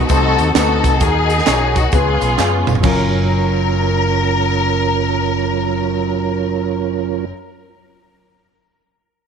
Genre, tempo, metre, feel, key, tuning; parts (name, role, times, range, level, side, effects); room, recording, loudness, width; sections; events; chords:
uptempo gospel; 131 BPM; 4/4; swing 64% on 8ths; F# major; A4 = 440 Hz
warm studio string section; melody; 0.0-7.2 s; B3 to A#4; -19 LUFS; left 2 dB; tape echo
mellow tonewheel organ; sustained chords; 0.0-7.3 s; F#3 to D#6; -21 LUFS; right 15 dB; chorus vibrato, stopped rotary speaker
fingered electric bass; bass; 0.0-7.3 s; E#1 to F#2; -20 LUFS; equal
warm grand piano; accompaniment; 0.1-7.3 s; F#2 to C#5; -23 LUFS; left 13 dB
crisp fusion drum kit; drums; 0.1-3.0 s; crash cymbal, hi-hat, kick drum, snare drum, toms; -19 LUFS; right 3 dB
tambourine and handclaps; percussion; 0.1-3.1 s; -28 LUFS; right 6 dB
small room ambience; 1960s-style stereo with parts hard left and right; -14 LUFS; side -6 dB against mid
0.0-2.8 A section; 2.8-6.5 B section
drum fill 2.4-2.8
0.1 Cdim7; 1.0 D#m; 1.9 C#7; 2.8 F#maj7